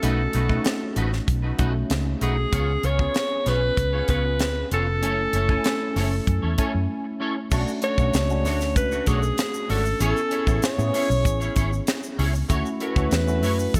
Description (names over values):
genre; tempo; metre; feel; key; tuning
polished 1980s jazz-funk pop; 96 BPM; 4/4; straight; unclear; A4 = 440 Hz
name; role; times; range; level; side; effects
breathy alto saxophone; melody; 0.0-13.8 s; G#4 to C#5; -28 LUFS; equal; none
tine electric piano; accompaniment; 0.0-13.8 s; A3 to G#5; -32 LUFS; equal; ensemble chorus
semi-hollow electric guitar; riff; 0.0-13.8 s; A3 to C#5; -34 LUFS; equal; ensemble chorus
vintage muted fingered electric bass; bass; 0.0-13.8 s; E#1 to A2; -27 LUFS; equal; none
tight funk drum kit; drums; 0.0-13.8 s; crash cymbal, hi-hat, kick drum, snare drum; -28 LUFS; equal; gated reverb
egg shaker; percussion; 7.5-13.8 s; none; -43 LUFS; equal; none
room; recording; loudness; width
studio reverb; none; -23 LUFS; mono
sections
0.0-7.5 A section; 7.5-13.8 B section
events
break 6.9-7.5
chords
0.0 B7; 2.5 C#7; 5.0 F#m7; 7.5 Bm9; 10.0 Amaj7; 12.5 Dmaj9